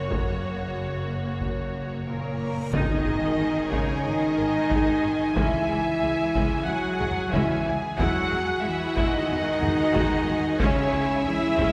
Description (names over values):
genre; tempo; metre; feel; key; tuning
cinematic, epic orchestral film score; 92 BPM; 4/4; straight; unclear; A4 = 440 Hz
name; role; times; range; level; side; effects
rich studio violin section; melody; 0.0-11.7 s; C#5 to G#5; -36 LUFS; equal; none
rich symphonic violin section; second line; 0.0-11.7 s; F#4 to F#5; -34 LUFS; equal; none
bright symphonic viola section; accompaniment; 0.0-11.7 s; G#3 to A#4; -36 LUFS; equal; none
warm French horn section; sustained chords; 0.0-11.7 s; A#3 to F#4; -29 LUFS; equal; none
rich symphonic cello section; bass; 0.0-11.7 s; F#2 to F#3; -35 LUFS; equal; none
rich symphonic double bass section; bass; 0.0-11.7 s; F#1 to E2; -36 LUFS; equal; none
taiko ensemble; drums; 0.1-11.7 s; none; -33 LUFS; equal; none
reverse cymbal and impact; sound effects; 2.3-5.4 s; none; -44 LUFS; equal; none
clear symphonic string section; sustained chords; 2.7-11.7 s; G#3 to G#5; -37 LUFS; equal; none
timpani; percussion; 2.7-3.7 s; G#2; -39 LUFS; equal; none
room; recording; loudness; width
wet scoring stage reverb, RT60 2.0 s; heard from further back in the room; -25 LUFS; mono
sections
0.0-2.7 A section; 2.7-11.7 B section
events
build-up 0.0-2.7; reverse cymbal 2.3-2.7; impact 2.7-5.4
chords
0.0 F#; 2.7 G#sus2; 5.4 C#m; 8.0 Eadd9; 10.6 C#m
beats
| 0.11 0.77 1.43 2.08 | 2.74 3.40 4.05 4.71 | 5.37 6.02 6.68 7.33 | 7.99 8.64 9.30 9.96 | 10.61 11.27